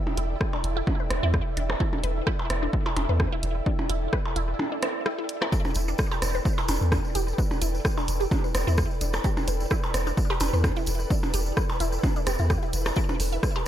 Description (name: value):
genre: minimal techno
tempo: 129 BPM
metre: 4/4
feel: swing 54% on 16ths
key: E minor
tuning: A4 = 441 Hz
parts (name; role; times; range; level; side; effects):
- ethereal airy pad; texture; 0.0-13.7 s; E4 to G5; -35 LUFS; equal; ensemble chorus, built-in reverb, sidechain pumping
- flickering grainy texture; texture; 0.0-13.7 s; B4 to E5; -39 LUFS; right 1 dB; built-in reverb, sidechain pumping
- electronic percussion blips and rim click; percussion; 0.1-13.6 s; none; -32 LUFS; right 1 dB; analog delay
- resonant blip pluck; riff; 0.2-13.6 s; D4 to E5; -34 LUFS; equal; phaser, sidechain pumping, dub echo
- punchy sub bass; bass; 0.2-13.4 s; E1 to E2; -27 LUFS; equal; sidechain pumping
- punchy analog drum machine; drums; 0.2-13.5 s; hi-hat, rim click; -33 LUFS; equal; analog delay
- electronic kick drum; drums; 0.4-13.5 s; none; -27 LUFS; equal; none
- tambourine; percussion; 5.5-13.6 s; none; -38 LUFS; equal; none
room: little or no reverb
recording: echo-heavy mix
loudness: -23 LUFS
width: side -11 dB against mid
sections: 0.0-13.7 A section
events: none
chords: 0.0 Em